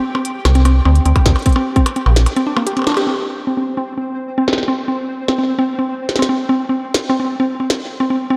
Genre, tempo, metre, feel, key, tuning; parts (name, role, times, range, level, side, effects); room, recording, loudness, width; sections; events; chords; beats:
IDM; 149 BPM; 4/4; straight; A4 = 440 Hz
mallet-like synth pluck; arpeggios; 0.0-8.4 s; Bb3 to G4; -20 LUFS; equal; chorus, tape echo
pulsing gated texture; texture; 0.0-8.4 s; C4 to G5; -31 LUFS; equal; chorus, built-in reverb
glitchy drum kit; drums; 0.1-7.8 s; hi-hat, percussion blips, snare drum; -24 LUFS; equal; low-pass filter on hats, low-pass filter on perc, low-pass filter on snare, low-pass filter on room, tape echo
metallic FM bass; bass; 0.5-2.3 s; Bb1 to D2; -13 LUFS; equal; tube saturation
electronic kick drum; drums; 1.2-1.8 s; -16 LUFS; equal
wet lush hall reverb, RT60 2.1 s; dreamy mix soaked in reverb; -17 LUFS; mono
0.0-3.1 A section; 3.1-8.4 B section
band accent 2.9; filter sweep on synth arpeggio sound 3.1-8.4
0.0 Csus2; 1.5 Bbsus2; 3.1 N.C.
0.25 0.65 1.06 | 1.46 1.86 2.26 2.67 | 3.07 3.47 3.88 4.28 | 4.68 5.08 5.49 5.89 | 6.29 6.69 7.10 7.50 | 7.90 8.30